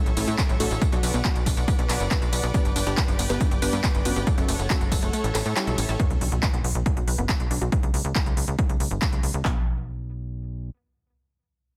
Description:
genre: uplifting trance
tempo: 139 BPM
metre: 4/4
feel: straight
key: B minor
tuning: A4 = 435 Hz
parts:
  - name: unison pluck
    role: melody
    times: 0.0-5.8 s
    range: F#3 to D5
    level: -33 LUFS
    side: equal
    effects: sidechain pumping, digital delay
  - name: supersaw pad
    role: sustained chords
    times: 0.0-5.9 s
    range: A4 to D6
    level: -36 LUFS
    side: equal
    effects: sidechain pumping
  - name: tight sequencer bass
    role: bass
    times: 0.1-10.7 s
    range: F#1 to A2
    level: -30 LUFS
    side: equal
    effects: sidechain pumping
  - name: big-room dance drum kit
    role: drums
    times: 0.1-9.4 s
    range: handclaps, hi-hat, ride cymbal, tambourine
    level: -32 LUFS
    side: equal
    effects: overdrive
  - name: unison pluck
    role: arpeggios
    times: 0.2-9.7 s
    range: A3 to A5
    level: -37 LUFS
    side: equal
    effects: sidechain pumping, digital delay
  - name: big-room dance drum kit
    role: drums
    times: 0.4-9.6 s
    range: handclaps, kick drum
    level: -26 LUFS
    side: equal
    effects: overdrive
  - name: impact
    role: sound effects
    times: 6.1-7.7 s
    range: none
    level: -36 LUFS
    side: equal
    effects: none
room: little or no reverb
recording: dense, heavily limited modern master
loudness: -24 LUFS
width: mono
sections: 0.0-6.0 A section; 6.0-9.4 B section; 9.4-11.8 C section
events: drop 0.0-6.0; kick drops out 5.1-6.0; impact 6.0-7.7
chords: 0.0 A; 0.8 Bm; 2.5 G; 4.3 F#m; 5.1 A; 6.0 B5; 7.7 N.C.

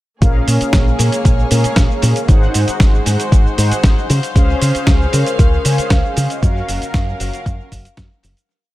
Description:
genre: nu-disco, nu disco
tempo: 116 BPM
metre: 4/4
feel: straight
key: Bb minor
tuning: A4 = 440 Hz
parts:
  - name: mellow synth brass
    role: accompaniment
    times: 0.2-7.7 s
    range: Db4 to Gb5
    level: -22 LUFS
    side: equal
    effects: chorus, sidechain pumping, tape echo
  - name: warm studio string section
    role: sustained chords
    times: 0.2-8.5 s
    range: Ab3 to F5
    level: -26 LUFS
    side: left 2 dB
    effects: sidechain pumping
  - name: fingered electric bass with an envelope filter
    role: bass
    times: 0.2-8.3 s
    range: Gb1 to Db3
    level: -16 LUFS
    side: equal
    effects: none
  - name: dusty soul sampler-style drum kit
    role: drums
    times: 0.2-8.5 s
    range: hi-hat, shaker, snare drum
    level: -21 LUFS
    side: equal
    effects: tape echo
  - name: electronic kick drum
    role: drums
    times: 0.2-8.1 s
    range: none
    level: -13 LUFS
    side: equal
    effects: none
  - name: vibraphone with medium mallets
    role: melody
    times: 5.1-7.9 s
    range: Bb4 to F5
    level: -25 LUFS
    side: left 2 dB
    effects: vintage 12-bit sampler grit, dub echo
room: light reverb, digital ambience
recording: echo-heavy mix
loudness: -12 LUFS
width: side -16 dB against mid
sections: 0.2-8.5 drop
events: drop 0.2-8.5; fade-out 5.7-8.5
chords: 0.2 Bbm7; 2.3 Ab7; 4.1 Dbmaj7; 6.4 Gbmaj7

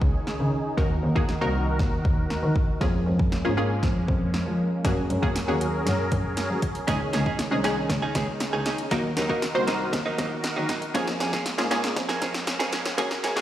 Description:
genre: dance-pop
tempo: 118 BPM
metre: 4/4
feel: straight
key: unclear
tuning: A4 = 441 Hz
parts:
  - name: punchy chord stab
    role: accompaniment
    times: 0.0-13.4 s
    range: Ab3 to C5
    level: -29 LUFS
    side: left 1 dB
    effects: chorus
  - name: filtered supersaw swell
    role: sustained chords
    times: 0.0-13.4 s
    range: Eb3 to Bb4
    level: -31 LUFS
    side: equal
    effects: sidechain pumping
  - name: clear double bass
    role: bass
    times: 0.0-13.4 s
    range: C2 to Gb3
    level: -28 LUFS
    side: equal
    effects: sidechain pumping
  - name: deep house drum kit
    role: drums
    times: 0.0-13.4 s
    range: hi-hat, kick drum, snare drum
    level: -27 LUFS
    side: equal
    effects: overdrive
  - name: direct-recorded clean electric guitar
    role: riff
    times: 6.9-13.4 s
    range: Gb3 to Ab4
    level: -30 LUFS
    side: right 4 dB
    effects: lush chorus
room: light reverb, digital ambience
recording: played on a big sound system in a bare room, stone room reverb, high-pass filter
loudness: -23 LUFS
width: side -12 dB against mid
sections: 0.0-13.4 A section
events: build-up 0.0-13.4; drum fill 0.0-13.4; filter sweep 0.0-13.4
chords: 0.0 Dbsus2; 0.8 Ebm; 2.8 Bbm7/F; 4.8 Gbadd9; 6.9 Dbsus2; 8.9 Ebm; 10.9 Bbm7/F

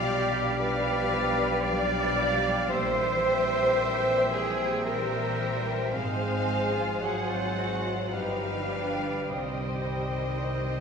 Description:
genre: classical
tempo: 50-58 BPM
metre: 3/4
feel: rubato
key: unclear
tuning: A4 = 439 Hz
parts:
  - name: rich studio violin section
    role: melody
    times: 0.0-10.8 s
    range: Eb5 to Gb5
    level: -37 LUFS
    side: left 3 dB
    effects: none
  - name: bright flute section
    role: second line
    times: 0.0-10.8 s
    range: G5 to Ab5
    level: -38 LUFS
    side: right 2 dB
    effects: none
  - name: dark clarinet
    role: second line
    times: 0.0-10.8 s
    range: B4 to D5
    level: -38 LUFS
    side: left 2 dB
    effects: none
  - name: rich studio violin section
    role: second line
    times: 0.0-10.8 s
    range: B4 to D5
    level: -37 LUFS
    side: left 2 dB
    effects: none
  - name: warm cor anglais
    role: second line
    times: 0.0-10.8 s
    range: Eb5 to Gb5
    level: -37 LUFS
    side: right 2 dB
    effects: none
  - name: clear studio viola section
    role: accompaniment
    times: 0.0-10.8 s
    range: Gb3 to Ab3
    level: -37 LUFS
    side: right 2 dB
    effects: none
  - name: warm bassoon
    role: accompaniment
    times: 0.0-10.8 s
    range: Gb3 to C4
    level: -37 LUFS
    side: equal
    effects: none
  - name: clear trombone section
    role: sustained chords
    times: 0.0-10.8 s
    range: G2 to Gb3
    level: -38 LUFS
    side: right 2 dB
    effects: none
  - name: warm French horn section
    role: sustained chords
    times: 0.0-10.8 s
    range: G3 to Ab4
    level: -39 LUFS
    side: left 3 dB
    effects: none
  - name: concert harp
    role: arpeggios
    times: 0.0-10.8 s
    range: G2 to G4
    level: -38 LUFS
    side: left 3 dB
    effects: none
  - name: mellow trumpet section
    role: stabs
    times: 0.0-10.8 s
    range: B4 to D5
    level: -37 LUFS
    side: left 3 dB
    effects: none
  - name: rich studio cello section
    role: bass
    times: 0.0-10.8 s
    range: C4 to D5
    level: -30 LUFS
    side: right 1 dB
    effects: none
  - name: rich studio double bass section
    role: bass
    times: 0.0-10.8 s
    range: G1 to C2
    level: -35 LUFS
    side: right 2 dB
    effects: none
room: wet recital hall reverb, RT60 1.7 s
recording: recorded in a church or concert hall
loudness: -25 LUFS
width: side -6 dB against mid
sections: 0.0-10.8 A section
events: none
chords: 0.0 G7/B; 2.7 C7/Bb; 5.9 Fm/Ab; 7.0 Ab7; 8.1 G7; 9.3 Cm

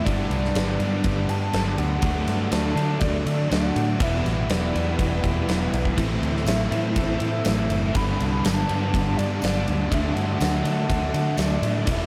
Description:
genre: rock, shoegaze and dream pop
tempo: 122 BPM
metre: 4/4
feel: straight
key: unclear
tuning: A4 = 443 Hz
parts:
  - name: pure sine lead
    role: melody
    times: 0.0-12.1 s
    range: D5 to B5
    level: -34 LUFS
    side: equal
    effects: chorus, tape echo
  - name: evolving wavetable pad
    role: sustained chords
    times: 0.0-12.1 s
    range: E4 to A5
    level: -38 LUFS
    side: equal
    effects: none
  - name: biting overdriven guitar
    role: riff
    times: 0.0-12.1 s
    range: G2 to E4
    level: -33 LUFS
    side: equal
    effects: reverse reverb
  - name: overdriven electric guitar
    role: riff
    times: 0.0-12.1 s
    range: G2 to E4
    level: -34 LUFS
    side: equal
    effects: none
  - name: thick fuzz guitar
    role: riff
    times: 0.0-12.1 s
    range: E2 to D4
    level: -32 LUFS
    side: equal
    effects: none
  - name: vintage muted fingered electric bass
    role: bass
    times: 0.1-12.1 s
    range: E1 to D3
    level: -28 LUFS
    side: equal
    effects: none
  - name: huge arena drum kit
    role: drums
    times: 0.1-12.0 s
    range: kick drum, ride cymbal, snare drum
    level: -29 LUFS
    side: equal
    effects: none
  - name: tambourine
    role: percussion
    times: 6.5-11.5 s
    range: none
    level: -44 LUFS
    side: equal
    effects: none
room: light reverb, studio ambience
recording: none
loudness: -23 LUFS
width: mono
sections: 0.0-12.1 A section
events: none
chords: 0.1 Gadd9; 2.0 D; 4.0 Em7; 6.0 Am; 7.9 Gadd9; 9.9 D

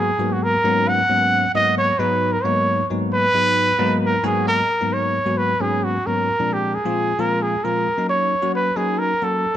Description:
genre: jazz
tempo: 266 BPM (eighths)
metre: 7/8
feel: straight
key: G# minor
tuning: A4 = 440 Hz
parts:
  - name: mellow trumpet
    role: melody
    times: 0.0-9.6 s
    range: F#4 to F#5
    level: -19 LUFS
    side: right 1 dB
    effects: tape echo
  - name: bell-like tine electric piano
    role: accompaniment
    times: 0.0-9.6 s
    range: G#2 to G#5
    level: -22 LUFS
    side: left 2 dB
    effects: analog chorus
room: moderate large studio reverb, RT60 1.5 s, studio reverb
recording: none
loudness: -17 LUFS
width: side -11 dB against mid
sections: 0.0-4.7 A section; 4.7-9.6 B section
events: tine electric piano fill 4.0-4.7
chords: 0.0 G#m9; 6.3 A#7; 7.9 D#m7

